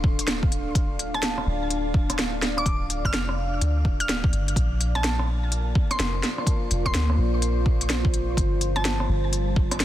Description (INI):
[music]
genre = future garage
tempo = 126 BPM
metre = 4/4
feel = swing 64% on 16ths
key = D minor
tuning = A4 = 441 Hz
[part]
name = deep dark ambient pad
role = sustained chords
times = 0.0-9.8 s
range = G3 to F5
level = -31 LUFS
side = equal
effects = chorus, built-in reverb, sidechain pumping
[part]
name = soft 808-style bass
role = bass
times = 0.0-9.8 s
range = D1 to D2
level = -26 LUFS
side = equal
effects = sidechain pumping
[part]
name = electronic kick drum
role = drums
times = 0.0-9.7 s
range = none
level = -23 LUFS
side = equal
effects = overdrive
[part]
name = organic electronic drum kit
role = drums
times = 0.2-9.8 s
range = hi-hat, rim click, snare drum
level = -28 LUFS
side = equal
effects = none
[part]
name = mallet-like synth pluck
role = melody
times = 1.1-9.0 s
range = A5 to F6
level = -32 LUFS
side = equal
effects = chorus, dub echo
[sound]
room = little or no reverb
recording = dense, heavily limited modern master, vinyl crackle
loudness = -21 LUFS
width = side -13 dB against mid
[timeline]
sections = 0.0-9.8 A section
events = none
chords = 0.0 Dm; 4.6 Bbmaj9; 8.4 Gm11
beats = 0.28 | 0.76 1.23 1.71 2.18 | 2.66 3.14 3.61 4.09 | 4.56 5.04 5.52 5.99 | 6.47 6.95 7.42 7.90 | 8.37 8.85 9.33 9.80